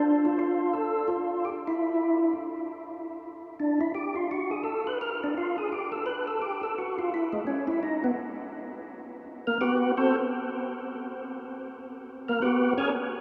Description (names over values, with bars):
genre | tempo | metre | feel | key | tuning
jazz | 170 BPM | 4/4 | swing 62% on 8ths | unclear | A4 = 442 Hz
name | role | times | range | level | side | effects
percussive tonewheel organ | solo | 0.0-10.2, 12.3-12.9 s | Ab3 to Db5 | -29 LUFS | equal | slow rotary speaker, overdrive, chorus vibrato
room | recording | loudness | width
wet huge ambient reverb, RT60 7.8 s | in a vast, echoing space, small room ambience | -29 LUFS | mono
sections
0.0-2.9 A section; 2.9-13.2 B section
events
tonewheel organ solo 2.9-13.2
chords
0.0 N.C.; 8.5 Gmaj7; 9.9 F#dim/C; 11.3 Gmaj7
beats
| 0.03 0.38 0.73 1.09 | 1.44 1.79 2.15 2.50 | 2.85 3.21 3.56 3.91 | 4.27 4.62 4.97 5.33 | 5.68 6.03 6.39 6.74 | 7.09 7.45 7.80 8.15 | 8.50 8.86 9.21 9.56 | 9.92 10.27 10.62 10.98 | 11.33 11.68 12.03 12.39 | 12.74